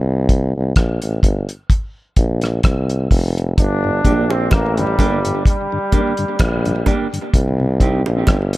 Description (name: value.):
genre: dub reggae.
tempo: 64 BPM.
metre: 4/4.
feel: swing 55% on 16ths.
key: G minor.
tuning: A4 = 440 Hz.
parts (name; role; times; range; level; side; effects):
clear tuba; bass; 0.0-8.6 s; F1 to C2; -18 LUFS; equal; none.
cloth-damped thuddy drum kit; drums; 0.3-8.6 s; hi-hat, kick drum, rim click; -16 LUFS; equal; none.
bright trombone; melody; 3.6-6.8 s; G3 to D4; -21 LUFS; equal; tape echo.
mellow tonewheel organ; accompaniment; 3.8-7.7 s; G2 to D4; -26 LUFS; left 2 dB; slow rotary speaker, tape echo.
mellow electric guitar; accompaniment; 4.0-8.0 s; Bb3 to G4; -24 LUFS; right 4 dB; tape echo.
bongos; percussion; 4.3-8.5 s; none; -27 LUFS; right 4 dB; none.
room: studio ambience.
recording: echo-heavy mix.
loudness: -15 LUFS.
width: side -18 dB against mid.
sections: 0.0-3.6 A section; 3.6-8.6 B section.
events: break 0.0-3.6; filter sweep 7.3-8.6.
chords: 0.0 C5; 3.6 Gm; 7.3 Cm.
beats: 0.76 1.70 2.64 | 3.58 4.52 5.46 6.40 | 7.33 8.28.